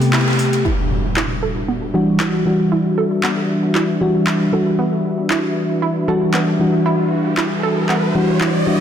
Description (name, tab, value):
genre	deep house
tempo	116 BPM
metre	4/4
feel	swing 55% on 16ths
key	E minor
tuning	A4 = 441 Hz
part	mellow FM electric piano	stabs	0.0-8.8 s	C3 to G4	-17 LUFS	left 1 dB	chorus, cassette tape, low-pass filter, analog delay
part	deep house drum kit	drums	0.0-8.5 s	handclaps, hi-hat	-24 LUFS	equal	overdrive, small room ambience
part	analog pluck	arpeggios	0.1-8.5 s	B3 to A4	-24 LUFS	right 5 dB	chorus, analog delay
part	huge arena drum kit	drums	0.1-0.6 s	ride cymbal, snare drum	-34 LUFS	left 1 dB	high-pass filter on cymbals, small room ambience, high-pass filter on snare, high-pass filter on room
part	warm analog pad	sustained chords	0.6-8.8 s	G3 to E5	-25 LUFS	equal	chorus
part	impact and riser	sound effects	0.6-8.8 s	none	-24 LUFS	right 1 dB	none
room	moderate lush hall reverb, RT60 1.8 s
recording	dense, heavily limited modern master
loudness	-15 LUFS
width	side -9 dB against mid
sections	0.7-8.8 A section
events	band accent 0.1; impact 0.7-2.7; filter sweep on analog synth pad 0.7-8.8; filter sweep on synth arpeggio sound 0.7-8.8; riser 6.0-8.8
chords	0.0 Am9; 0.7 Em9